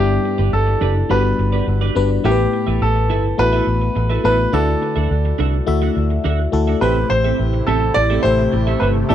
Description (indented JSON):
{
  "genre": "pop",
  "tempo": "105 BPM",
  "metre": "4/4",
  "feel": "straight",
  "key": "unclear",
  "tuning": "A4 = 440 Hz",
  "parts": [
    { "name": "clear baby grand piano", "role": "melody", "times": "0.0-9.1 s", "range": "G4 to D5", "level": "-20 LUFS", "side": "right 1 dB", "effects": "tape echo" },
    { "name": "FM electric piano", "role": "accompaniment", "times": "0.0-9.1 s", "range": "G2 to E5", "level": "-21 LUFS", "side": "left 6 dB", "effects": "chorus" },
    { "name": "twelve-string electric guitar", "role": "riff", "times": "0.0-9.1 s", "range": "C4 to E5", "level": "-26 LUFS", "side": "right 9 dB", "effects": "analog chorus, tape echo" },
    { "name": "vintage muted fingered electric bass", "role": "bass", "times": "0.0-9.1 s", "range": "F#1 to D2", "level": "-18 LUFS", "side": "equal", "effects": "none" },
    { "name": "brassy analog pad", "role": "sustained chords", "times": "6.8-9.1 s", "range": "C3 to G4", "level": "-24 LUFS", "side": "right 2 dB", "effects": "chorus" }
  ],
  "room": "little or no reverb",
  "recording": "dry, close 1970s-style studio recording",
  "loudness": "-15 LUFS",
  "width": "side -10 dB against mid",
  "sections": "0.0-6.8 A section; 6.8-9.1 B section",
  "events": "none",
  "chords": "0.0 G; 2.2 Asus2; 4.5 Dadd9; 6.8 Am7"
}